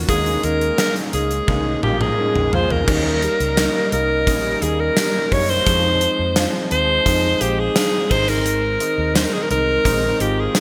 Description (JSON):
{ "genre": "1980s-style pop", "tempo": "86 BPM", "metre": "4/4", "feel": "straight", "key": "unclear", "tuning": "A4 = 440 Hz", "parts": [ { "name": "warm concert grand piano", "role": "accompaniment", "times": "0.0-10.6 s", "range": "Eb3 to F4", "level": "-26 LUFS", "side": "equal", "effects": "analog chorus" }, { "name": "vintage muted fingered electric bass", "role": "bass", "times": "0.0-10.5 s", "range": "Ab1 to Gb2", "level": "-26 LUFS", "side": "equal", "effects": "none" }, { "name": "bright alto saxophone", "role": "melody", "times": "0.1-10.6 s", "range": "G4 to Db5", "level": "-22 LUFS", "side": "equal", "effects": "digital delay" }, { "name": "gated 80s drum kit", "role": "drums", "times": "0.1-10.6 s", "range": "crash cymbal, hi-hat, kick drum, snare drum, tambourine, toms", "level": "-24 LUFS", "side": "equal", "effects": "gated reverb" } ], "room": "moderate lush hall reverb, RT60 2.2 s", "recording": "bright 1980s-style digital production", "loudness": "-18 LUFS", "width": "mono", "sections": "0.0-2.9 A section; 2.9-10.6 B section", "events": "drum fill 1.5-2.9", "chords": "0.1 Eb7sus4; 2.9 Eb7; 5.7 Fm7; 8.1 Ab" }